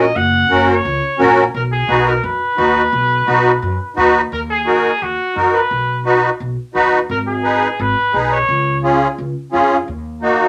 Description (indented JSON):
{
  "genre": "latin, cumbia",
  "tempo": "173 BPM",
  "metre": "4/4",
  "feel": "straight",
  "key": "unclear",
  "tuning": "A4 = 438 Hz",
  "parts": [
    { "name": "warm trumpet", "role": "melody", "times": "0.0-8.8 s", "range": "Gb4 to Gb5", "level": "-19 LUFS", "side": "equal", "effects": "none" },
    { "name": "musette accordion", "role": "accompaniment", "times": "0.0-10.5 s", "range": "Bb3 to B4", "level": "-16 LUFS", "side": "equal", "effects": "none" },
    { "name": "upright bass", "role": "bass", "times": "0.0-10.4 s", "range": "Gb1 to F#2", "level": "-24 LUFS", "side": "equal", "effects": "none" }
  ],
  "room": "wet studio ambience, RT60 0.5 s",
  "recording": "none",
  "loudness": "-15 LUFS",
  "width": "mono",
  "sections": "0.0-4.3 A section; 4.3-10.5 B section",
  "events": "none",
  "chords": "0.0 Gb; 1.5 B; 4.3 Ebm; 5.7 B; 7.1 Abm; 8.5 Db; 9.9 Ebm"
}